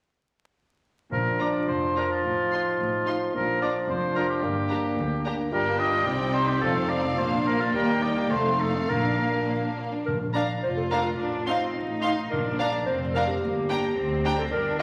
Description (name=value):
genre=quick classical-period movement for symphony orchestra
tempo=108 BPM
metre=2/4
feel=rubato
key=Bb major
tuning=A4 = 443 Hz
part: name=clear oboe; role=second line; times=1.1-9.5 s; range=F4 to Eb5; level=-30 LUFS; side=equal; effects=none
part: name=mellow clarinet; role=second line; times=1.1-14.8 s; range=D4 to D5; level=-34 LUFS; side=equal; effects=none
part: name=warm bassoon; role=accompaniment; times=1.1-9.8 s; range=F3 to Bb3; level=-33 LUFS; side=equal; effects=none
part: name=dark French horn section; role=sustained chords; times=1.1-9.8 s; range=F3 to F4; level=-37 LUFS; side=equal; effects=none
part: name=clear chamber cello section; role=bass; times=1.1-14.8 s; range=D2 to F4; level=-37 LUFS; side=equal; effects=none
part: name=rich chamber double bass section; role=bass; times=1.1-14.8 s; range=F1 to Eb2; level=-36 LUFS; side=equal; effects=none
part: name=timpani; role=percussion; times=1.1-1.9, 6.6-13.1 s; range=F2 to Bb2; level=-39 LUFS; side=equal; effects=none
part: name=rich studio violin section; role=melody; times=1.4-14.8 s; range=F5 to C6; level=-38 LUFS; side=equal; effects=none
part: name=clear studio violin section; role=second line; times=1.4-14.4 s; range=G3 to G5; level=-35 LUFS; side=equal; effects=none
part: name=rich studio viola section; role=accompaniment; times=1.4-14.8 s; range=A3 to Eb4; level=-35 LUFS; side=equal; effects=none
room=wet scoring stage reverb, RT60 1.5 s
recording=vinyl crackle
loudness=-26 LUFS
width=mono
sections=1.1-10.1 A section; 10.1-14.8 A section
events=none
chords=1.1 Bb; 2.2 F7/A; 3.3 Bb; 4.4 Gm; 5.5 Gm7; 6.1 Cm; 6.6 F7; 7.2 Bb; 7.7 Eb; 8.3 F7; 8.9 Bb; 11.2 F7/A; 12.3 Bb; 13.4 Gm